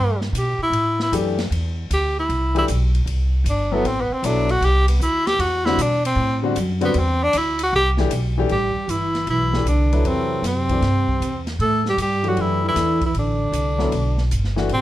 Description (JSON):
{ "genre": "modal jazz", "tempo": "155 BPM", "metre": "4/4", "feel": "swing 66% on 8ths", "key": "A dorian", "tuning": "A4 = 439 Hz", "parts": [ { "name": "clear tenor saxophone", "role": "melody", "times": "0.0-14.8 s", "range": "B3 to A4", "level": "-21 LUFS", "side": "equal", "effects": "none" }, { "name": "upright bass", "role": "bass", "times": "0.0-14.8 s", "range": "G1 to B2", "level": "-21 LUFS", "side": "equal", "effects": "none" }, { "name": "open jazz drum kit", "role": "drums", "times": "0.2-14.8 s", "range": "hi-hat, kick drum, ride cymbal, snare drum", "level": "-32 LUFS", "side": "equal", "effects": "none" }, { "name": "clear grand piano", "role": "accompaniment", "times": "1.1-14.7 s", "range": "D3 to B4", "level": "-24 LUFS", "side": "left 4 dB", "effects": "none" }, { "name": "breathy trombone", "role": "second line", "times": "8.5-14.8 s", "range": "C3 to A3", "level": "-27 LUFS", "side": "right 4 dB", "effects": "none" } ], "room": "light reverb", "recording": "dark, warm production", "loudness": "-18 LUFS", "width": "side -14 dB against mid", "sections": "0.0-8.5 A section; 8.5-14.8 B section", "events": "tenor saxophone solo 0.0-8.5", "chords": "0.0 Am9", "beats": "0.35 | 0.74 1.13 1.51 1.90 | 2.29 2.68 3.07 3.46 | 3.84 4.23 4.62 5.01 | 5.39 5.78 6.17 6.56 | 6.94 7.33 7.72 8.11 | 8.49 8.88 9.27 9.65 | 10.04 10.43 10.82 11.21 | 11.60 11.98 12.37 12.76 | 13.14 13.53 13.92 14.31 | 14.69" }